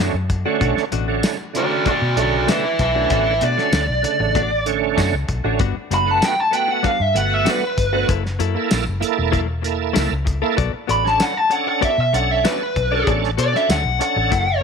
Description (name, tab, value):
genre	straight-eighth soul blues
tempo	96 BPM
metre	4/4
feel	straight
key	B minor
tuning	A4 = 440 Hz
part	bright tonewheel organ	accompaniment	0.0-14.6 s	C#3 to A4	-23 LUFS	right 14 dB	slow rotary speaker, overdrive, chorus vibrato
part	direct-recorded clean electric guitar	stabs	0.0-14.5 s	B2 to D5	-26 LUFS	left 14 dB	tape echo
part	vintage muted fingered electric bass	bass	0.0-14.6 s	E1 to B2	-22 LUFS	left 1 dB	none
part	cloth-damped thuddy drum kit	drums	0.3-14.5 s	hi-hat, kick drum, snare drum, tambourine	-23 LUFS	left 1 dB	none
part	smooth overdriven lead guitar	melody	1.6-14.6 s	F#4 to B5	-19 LUFS	equal	none
room	light reverb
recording	1960s-style stereo with parts hard left and right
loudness	-16 LUFS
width	side -6 dB against mid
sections	0.0-14.6 A section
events	none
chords	0.0 Bm7; 5.6 Gmaj7; 8.1 F#7#9; 10.6 Bm7